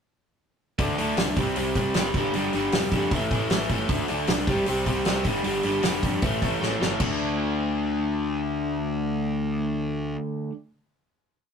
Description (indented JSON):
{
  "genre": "punk rock",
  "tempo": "155 BPM",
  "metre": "4/4",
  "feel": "straight",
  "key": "unclear",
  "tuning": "A4 = 440 Hz",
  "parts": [
    { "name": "overdriven electric guitar", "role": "riff", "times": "0.8-10.5 s", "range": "G2 to D4", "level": "-25 LUFS", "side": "left 1 dB", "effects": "none" },
    { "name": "fuzz picked electric bass", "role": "bass", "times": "0.8-10.1 s", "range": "F1 to F2", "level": "-32 LUFS", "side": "equal", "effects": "overdrive" },
    { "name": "loose indie drum kit", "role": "drums", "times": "0.8-7.1 s", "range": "crash cymbal, hi-hat, kick drum, snare drum", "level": "-27 LUFS", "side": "equal", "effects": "none" }
  ],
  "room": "light reverb",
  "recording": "rough rehearsal-room recording",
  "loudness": "-23 LUFS",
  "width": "side -6 dB against mid",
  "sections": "0.8-7.0 verse; 7.0-10.1 final chord",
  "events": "drum fill 6.6-7.0",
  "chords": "0.8 D5; 1.4 C5; 2.1 G5; 3.1 A5; 3.9 D5; 4.5 C5; 5.3 G5; 6.2 A5; 7.0 D5"
}